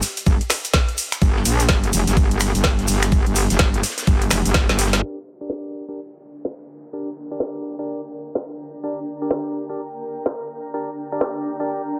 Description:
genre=bass house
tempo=126 BPM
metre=4/4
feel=swing 61% on 16ths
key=G minor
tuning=A4 = 439 Hz
part: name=garage drum kit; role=drums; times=0.0-11.3 s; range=crash cymbal, finger snaps, hi-hat, ride cymbal, snare drum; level=-25 LUFS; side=equal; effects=overdrive, low-pass filter on snare, low-pass filter on cymbals, low-pass filter on hats
part: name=shaker and snare drum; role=drums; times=0.0-5.0 s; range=none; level=-37 LUFS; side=equal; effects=none
part: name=egg shaker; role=percussion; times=0.0-5.0 s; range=none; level=-32 LUFS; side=equal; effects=none
part: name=metallic wobble bass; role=bass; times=0.3-5.0 s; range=F1 to Bb1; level=-22 LUFS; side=equal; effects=distortion, chorus, overdrive, sidechain pumping
part: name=electronic kick drum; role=drums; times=0.3-4.7 s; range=none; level=-20 LUFS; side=equal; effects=overdrive
part: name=percussive organ stab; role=stabs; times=5.0-11.8 s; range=D4 to D5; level=-31 LUFS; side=equal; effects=chorus, sidechain pumping, dub echo
part: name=downlifter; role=sound effects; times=5.2-8.8 s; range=none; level=-52 LUFS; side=equal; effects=none
part: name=granular cloud pad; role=texture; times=6.3-12.0 s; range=D4 to Bb5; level=-33 LUFS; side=equal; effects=built-in reverb, sidechain pumping
room=light reverb, small room ambience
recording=low-pass filter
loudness=-21 LUFS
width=mono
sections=0.0-5.0 A section; 5.0-12.0 B section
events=drop 0.0-5.0; drum fill 4.7-5.0; band accent 4.9; filter sweep 5.0-12.0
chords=0.0 N.C.; 5.0 Gm

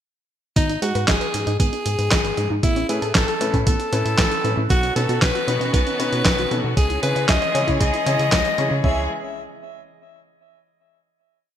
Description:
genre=italo disco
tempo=116 BPM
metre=4/4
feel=straight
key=C# minor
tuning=A4 = 440 Hz
part: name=raspy alto saxophone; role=melody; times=0.6-9.0 s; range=D#4 to E5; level=-24 LUFS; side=left 1 dB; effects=ping-pong delay
part: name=warbly dusty pluck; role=arpeggios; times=0.6-9.1 s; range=B3 to E5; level=-30 LUFS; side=right 2 dB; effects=ensemble chorus, ping-pong delay
part: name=chorused synth bass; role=bass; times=0.6-9.1 s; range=G#1 to C#3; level=-25 LUFS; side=equal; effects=none
part: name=dusty soul sampler-style drum kit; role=drums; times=0.6-8.7 s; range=handclaps, hi-hat, snare drum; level=-24 LUFS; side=equal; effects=gated reverb
part: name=electronic kick drum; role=drums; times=0.6-8.9 s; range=none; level=-20 LUFS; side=equal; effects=none
part: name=warm grand piano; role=stabs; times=2.9-9.0 s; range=C#4 to C#5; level=-28 LUFS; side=left 3 dB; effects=ping-pong delay
part: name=clear studio string section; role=sustained chords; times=4.7-9.1 s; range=D#3 to G#4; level=-27 LUFS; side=equal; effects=none
room=moderate plate reverb, RT60 1.6 s, small room ambience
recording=bright 1980s-style digital production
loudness=-18 LUFS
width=side -10 dB against mid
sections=0.6-8.8 verse; 8.8-10.9 final chord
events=none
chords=0.6 G#m; 2.6 Aadd9; 4.7 Badd9; 6.8 C#m

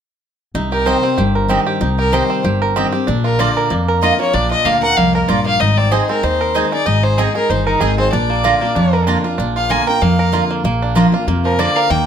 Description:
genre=bluegrass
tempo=190 BPM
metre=4/4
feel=swing 55% on 8ths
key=Bb mixolydian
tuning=A4 = 440 Hz
part: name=picked steel-string acoustic guitar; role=accompaniment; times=0.5-12.1 s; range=F2 to Ab4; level=-19 LUFS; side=left 2 dB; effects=none
part: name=upright bass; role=bass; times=0.5-12.1 s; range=G1 to F2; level=-19 LUFS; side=left 1 dB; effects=none
part: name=bluegrass banjo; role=arpeggios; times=0.6-12.1 s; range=F3 to Bb4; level=-19 LUFS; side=right 4 dB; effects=slapback echo
part: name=rich fiddle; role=melody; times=0.7-12.1 s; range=Eb4 to Ab5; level=-18 LUFS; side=left 2 dB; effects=none
part: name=mandolin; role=stabs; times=0.9-11.7 s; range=Bb3 to Bb5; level=-19 LUFS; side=right 5 dB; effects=slapback echo
room=moderate studio reverb, RT60 0.5 s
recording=none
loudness=-13 LUFS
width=side -8 dB against mid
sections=0.5-10.6 A section; 10.6-12.1 B section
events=none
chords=0.5 Cm; 3.1 Bb; 5.6 Ab; 8.1 Bb

